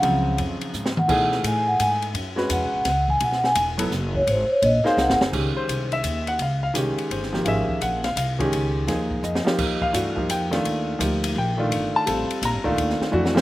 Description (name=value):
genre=modal jazz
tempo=169 BPM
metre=3/4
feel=swing 65% on 8ths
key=Ab mixolydian, Db lydian from 5.3 s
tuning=A4 = 440 Hz
part: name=vibraphone with soft mallets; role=melody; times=0.0-5.1 s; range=C5 to G#5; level=-21 LUFS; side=equal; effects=none
part: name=clear concert grand piano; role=accompaniment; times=0.0-13.4 s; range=Db3 to Bb5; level=-24 LUFS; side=equal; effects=slapback echo
part: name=upright bass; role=bass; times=0.0-13.4 s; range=Eb1 to B2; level=-27 LUFS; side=equal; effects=none
part: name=open jazz drum kit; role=drums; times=0.0-13.4 s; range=crash cymbal, hi-hat, kick drum, ride cymbal, snare drum, toms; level=-28 LUFS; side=equal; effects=none
room=little or no reverb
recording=recorded outdoors, with no room sound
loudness=-20 LUFS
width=side -16 dB against mid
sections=0.0-5.3 A section; 5.3-13.4 A section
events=vibraphone solo 0.0-5.3; drum fill 0.7-1.1, 5.0-5.3, 9.2-9.6, 13.1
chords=0.0 Ab7sus4; 1.1 B13sus4; 4.3 Abadd9; 5.3 Dbmaj9; 9.6 Ebmaj9